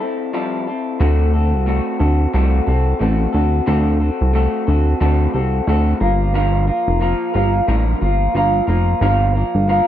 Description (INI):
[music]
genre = indie pop, bedroom pop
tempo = 90 BPM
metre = 4/4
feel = swing 60% on 16ths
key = unclear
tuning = A4 = 440 Hz
[part]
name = electric guitar through a small old amp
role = accompaniment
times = 0.0-9.9 s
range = G2 to Bb4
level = -19 LUFS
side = left 1 dB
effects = wide subtle chorus, vibrato effect
[part]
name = chorused synth bass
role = bass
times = 1.0-9.8 s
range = F1 to D2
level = -16 LUFS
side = equal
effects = none
[sound]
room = little or no reverb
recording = dry, close 1970s-style studio recording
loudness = -15 LUFS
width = side -11 dB against mid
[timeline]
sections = 0.0-1.0 A section; 1.0-9.9 B section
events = break 0.0-1.0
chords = 0.0 Fmaj9; 1.0 D7; 6.0 Gm7